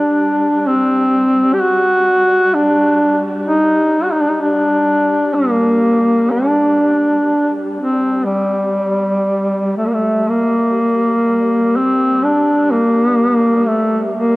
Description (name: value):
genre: caucasian folk, Caucasian lament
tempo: 62 BPM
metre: 4/4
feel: uneven beats, rubato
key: G harmonic minor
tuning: A4 = 440 Hz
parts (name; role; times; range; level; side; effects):
- mellow duduk; melody; 0.0-14.4 s; G3 to G4; -12 LUFS; equal; cassette tape, tape echo
- dark studio string section; drone; 0.0-14.4 s; G3; -25 LUFS; left 1 dB; cassette tape
room: wet spring reverb, RT60 2.7 s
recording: home recording on cassette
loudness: -12 LUFS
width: side -20 dB against mid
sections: 0.0-10.3 A section; 10.3-14.4 B section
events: none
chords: none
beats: 0.66 1.59 | 2.52 3.45 4.39 5.34 | 6.30 7.28 8.26 9.27 | 10.29 11.28 12.25 13.21 | 14.16